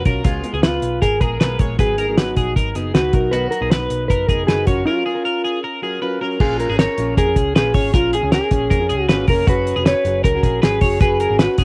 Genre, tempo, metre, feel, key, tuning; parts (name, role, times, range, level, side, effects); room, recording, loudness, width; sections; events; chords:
jangly indie pop; 156 BPM; 4/4; straight; A4 = 440 Hz
mellow electric guitar; melody; 0.0-11.6 s; F4 to Db5; -23 LUFS; equal; cassette tape
fingerpicked plugged-in steel-string acoustic guitar; accompaniment; 0.0-11.6 s; Ab2 to Bb4; -28 LUFS; equal; cassette tape
twelve-string electric guitar; arpeggios; 0.0-11.6 s; F4 to Db5; -27 LUFS; equal; subtle chorus, cassette tape
vintage muted picked electric bass; bass; 0.0-11.6 s; F1 to F2; -27 LUFS; equal
cloth-damped thuddy drum kit; drums; 0.1-11.6 s; crash cymbal, hi-hat, kick drum, snare drum; -20 LUFS; equal; cassette tape
light reverb; home recording on cassette; -18 LUFS; mono
0.0-6.4 A section; 6.4-11.6 B section
break 4.9-6.4
0.2 Db7; 1.8 Abm7; 3.1 Cbmaj7; 4.7 Gbmaj7; 6.4 Bbm7; 9.5 Gbsus2